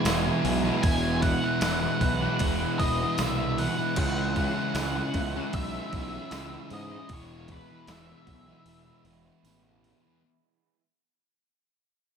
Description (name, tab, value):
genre	rock, shoegaze and dream pop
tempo	77 BPM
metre	4/4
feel	straight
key	E major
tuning	A4 = 439 Hz
part	octave-fuzz lead guitar	melody	0.0-9.0 s	B4 to G#5	-33 LUFS	equal	distortion, slapback echo
part	crunchy overdriven guitar	riff	0.0-10.2 s	E2 to E4	-31 LUFS	right 10 dB	reverse reverb
part	thick fuzz guitar	riff	0.0-10.2 s	E2 to C#4	-32 LUFS	left 11 dB	distortion, lush chorus
part	fuzz picked electric bass	bass	0.1-9.9 s	E1 to G#2	-32 LUFS	equal	overdrive
part	gated 80s digital drum machine	drums	0.1-10.0 s	crash cymbal, hi-hat, kick drum, snare drum	-31 LUFS	equal	gated reverb, gated reverb snare
part	tambourine	percussion	0.1-9.6 s	none	-42 LUFS	right 11 dB	none
room	light reverb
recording	none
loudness	-24 LUFS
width	side -7 dB against mid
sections	0.0-10.2 A section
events	fade-out 0.0-10.2; break 8.7-10.2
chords	0.0 Eadd9; 4.0 C#m; 7.1 E